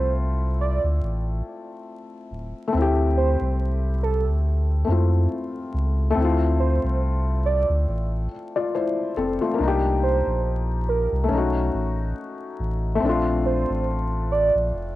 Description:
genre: lo-fi hip hop.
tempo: 70 BPM.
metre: 4/4.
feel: swing 56% on 16ths.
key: D minor.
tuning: A4 = 440 Hz.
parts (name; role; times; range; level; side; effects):
warm velvety synth lead; melody; 0.0-14.5 s; A4 to D5; -26 LUFS; right 5 dB; chorus, low-pass filter, cassette tape, analog delay.
felt-muted upright piano; accompaniment; 0.0-15.0 s; A3 to D5; -26 LUFS; left 4 dB; cassette tape, low-pass filter.
warm sub bass; bass; 0.0-15.0 s; D1 to F2; -23 LUFS; equal; none.
room: moderate spring reverb, RT60 1.3 s, small room ambience.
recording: home recording on cassette, vinyl crackle.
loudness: -20 LUFS.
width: side -16 dB against mid.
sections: 0.0-6.2 A section; 6.2-15.0 B section.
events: none.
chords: 0.0 Dm9; 6.2 Dm7; 9.6 Cm7; 11.3 B9; 13.0 Bbmaj7.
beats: 0.16 1.01 1.87 | 2.73 3.59 4.44 5.30 | 6.16 7.01 7.87 8.73 | 9.59 10.44 11.30 12.16 | 13.02 13.87 14.73.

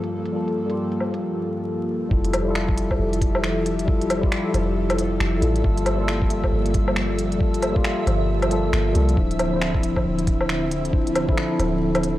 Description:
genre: future garage.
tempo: 136 BPM.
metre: 4/4.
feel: swing 61% on 16ths.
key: unclear.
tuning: A4 = 438 Hz.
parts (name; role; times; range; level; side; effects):
mellow tine electric piano; accompaniment; 0.0-12.2 s; F3 to C5; -24 LUFS; left 1 dB; phaser, sidechain pumping, tape echo.
airy breathy pad; sustained chords; 0.0-12.2 s; G2 to E5; -28 LUFS; left 1 dB; chorus, sidechain pumping.
organic electronic drum kit; drums; 0.0-12.1 s; finger snaps, hi-hat, woodblock; -27 LUFS; equal; low-pass filter on hats, low-pass filter on perc, low-pass filter on snare, low-pass filter on room.
soft 808-style bass; bass; 2.1-12.2 s; D1 to C2; -25 LUFS; equal; sidechain pumping.
electronic kick drum; drums; 2.1-11.4 s; none; -22 LUFS; equal; none.
flickering grainy texture; texture; 2.6-12.2 s; E5; -35 LUFS; right 4 dB; built-in reverb.
room: little or no reverb.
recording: dry, gritty hardware recording, vinyl crackle.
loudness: -19 LUFS.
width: side -15 dB against mid.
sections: 0.0-2.1 A section; 2.1-12.2 B section.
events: break 1.2-2.1.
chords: 0.0 Gm9; 2.1 Fmaj9; 5.6 Gm9; 9.2 Dm9.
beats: | 0.34 0.79 1.23 1.67 | 2.11 2.55 2.99 3.43 | 3.87 4.31 4.76 5.20 | 5.64 6.08 6.52 6.96 | 7.40 7.84 8.29 8.73 | 9.17 9.61 10.05 10.49 | 10.93 11.37 11.81.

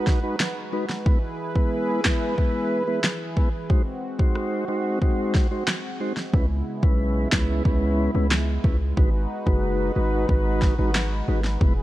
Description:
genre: dancehall.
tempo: 91 BPM.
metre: 4/4.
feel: straight.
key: G# minor.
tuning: A4 = 440 Hz.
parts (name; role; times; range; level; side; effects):
mellow tonewheel organ; accompaniment; 0.0-11.7 s; G#3 to B#4; -26 LUFS; equal; slow rotary speaker, sidechain pumping.
warm analog pad; sustained chords; 0.0-11.8 s; C#3 to B4; -30 LUFS; right 1 dB; chorus, sidechain pumping.
deep house drum kit; drums; 0.1-11.8 s; handclaps, kick drum, rim click, snare drum; -22 LUFS; equal; none.
hard-hitting 808-style bass; bass; 6.3-11.8 s; E1 to C#2; -24 LUFS; equal; none.
room: light reverb.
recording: none.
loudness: -21 LUFS.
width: side -16 dB against mid.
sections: 0.0-11.8 A section.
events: none.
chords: 0.0 G#m7; 1.1 E; 3.7 G#7; 6.3 C#m7; 9.0 G#m7.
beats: 0.40 | 1.06 1.72 2.38 3.04 | 3.70 4.36 5.02 5.68 | 6.33 7.00 7.65 8.31 | 8.97 9.63 10.29 10.95 | 11.61.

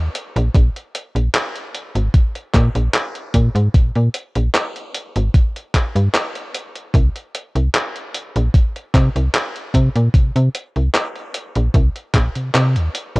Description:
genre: vaporwave.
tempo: 75 BPM.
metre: 4/4.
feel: straight.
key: unclear.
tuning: A4 = 440 Hz.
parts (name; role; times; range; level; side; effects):
slap-like FM bass; bass; 0.0-13.2 s; Ab1 to C3; -16 LUFS; equal; tube saturation.
detuned 8-bit digital drum machine; drums; 0.1-13.2 s; handclaps, hi-hat; -22 LUFS; equal; none.
electronic kick drum; drums; 0.5-12.3 s; none; -14 LUFS; equal; none.
room: little or no reverb.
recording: worn, warbling old tape, cassette tape, warbly pitch drift.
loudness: -15 LUFS.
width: side -26 dB against mid.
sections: 0.0-13.2 A section.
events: none.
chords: none.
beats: | 0.54 1.34 2.14 2.94 | 3.74 4.54 5.34 6.14 | 6.94 7.74 8.54 9.34 | 10.14 10.94 11.74 12.54.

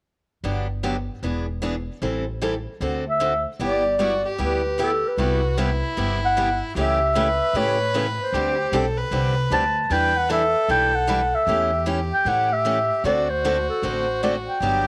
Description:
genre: acoustic string swing (jazz manouche).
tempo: 152 BPM.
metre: 4/4.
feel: swing 63% on 8ths.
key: G major.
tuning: A4 = 440 Hz.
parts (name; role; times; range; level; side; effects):
picked steel-string acoustic guitar; accompaniment; 0.4-14.8 s; C3 to B4; -29 LUFS; equal; none.
upright bass; bass; 0.4-14.9 s; E1 to A2; -30 LUFS; equal; none.
breathy clarinet; melody; 3.1-14.9 s; A4 to A5; -24 LUFS; equal; none.
rich violin; second line; 3.6-14.9 s; E4 to B4; -30 LUFS; equal; none.
room: light reverb, small room ambience.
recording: none.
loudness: -22 LUFS.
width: mono.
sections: 0.4-3.6 A section; 3.6-14.9 B section.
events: none.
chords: 0.4 Gmaj7; 1.2 E7; 2.0 Am7; 2.8 D7; 3.6 G6; 5.2 Cmaj7; 6.8 A9/C#; 8.3 D7sus4; 9.9 Em7; 11.5 A7/E; 13.1 D7.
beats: | 0.44 0.84 1.23 1.63 | 2.02 2.42 2.81 3.21 | 3.60 4.00 4.39 4.78 | 5.18 5.57 5.97 6.36 | 6.75 7.15 7.54 7.94 | 8.33 8.72 9.12 9.51 | 9.91 10.30 10.69 11.09 | 11.48 11.87 12.27 12.66 | 13.05 13.45 13.84 14.23 | 14.62.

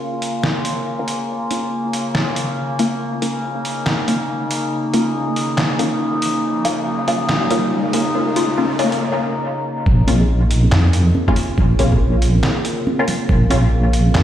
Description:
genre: deep dubstep.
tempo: 140 BPM.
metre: 4/4.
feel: swing 61% on 16ths, half-time.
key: Bb minor.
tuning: A4 = 437 Hz.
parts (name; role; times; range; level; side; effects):
overtone-sweeping drone; sustained chords; 0.0-14.2 s; Db3 to F4; -22 LUFS; equal; chorus, built-in reverb.
trip hop sampler-style drum kit; drums; 0.2-14.2 s; handclaps, hi-hat, snare drum; -23 LUFS; equal; none.
filtered dub chord stab; stabs; 1.0-13.6 s; Bb3 to F4; -22 LUFS; left 2 dB; phaser, analog chorus, dub echo.
riser; sound effects; 5.3-9.0 s; none; -26 LUFS; left 1 dB; none.
deep soft wobble bass; bass; 9.9-14.2 s; Bb1 to F2; -14 LUFS; equal; chorus.
electronic kick drum; drums; 9.9-13.4 s; none; -18 LUFS; equal; none.
congas and bongos; percussion; 9.9-14.1 s; none; -24 LUFS; right 2 dB; dub echo.
room: moderate echo chamber reverb, RT60 2.0 s.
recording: played on a big sound system in a bare room, stone room reverb.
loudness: -16 LUFS.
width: side -11 dB against mid.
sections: 0.0-9.9 A section; 9.9-14.2 B section.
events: build-up 0.0-9.9; filter sweep on synth stab 0.0-9.9; riser 5.3-9.0; break 9.0-9.9; drop 9.9-14.2.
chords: 0.0 Bbm.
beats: 0.01 0.44 0.86 | 1.29 1.72 2.15 2.58 | 3.01 3.44 3.86 4.29 | 4.72 5.15 5.58 6.01 | 6.44 6.86 7.29 7.72 | 8.15 8.58 9.01 9.44 | 9.86 10.29 10.72 11.15 | 11.58 12.01 12.44 12.86 | 13.29 13.72 14.15.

